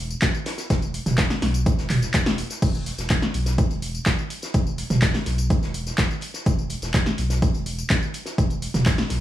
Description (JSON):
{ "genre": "acid house", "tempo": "125 BPM", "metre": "4/4", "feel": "straight", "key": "unclear", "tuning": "A4 = 440 Hz", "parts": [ { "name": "warm sub bass", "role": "bass", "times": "0.0-9.2 s", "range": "E1 to B1", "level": "-28 LUFS", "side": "equal", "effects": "sidechain pumping" }, { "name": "punchy analog drum machine", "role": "drums", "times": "0.1-9.2 s", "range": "crash cymbal, handclaps, hi-hat, snare drum, tambourine, toms", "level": "-26 LUFS", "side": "equal", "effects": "overdrive" }, { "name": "electronic kick drum", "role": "drums", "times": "0.2-9.0 s", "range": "none", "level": "-22 LUFS", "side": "equal", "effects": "overdrive" }, { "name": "loose indie drum kit", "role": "drums", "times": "0.2-9.2 s", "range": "hi-hat, snare drum", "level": "-35 LUFS", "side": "left 1 dB", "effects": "sidechain pumping on hats, high-pass filter on hats, high-pass filter on snare, high-pass filter on room" } ], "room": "little or no reverb", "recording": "studio ambience", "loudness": "-20 LUFS", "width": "side -13 dB against mid", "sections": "0.0-9.2 A section", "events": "none", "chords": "none" }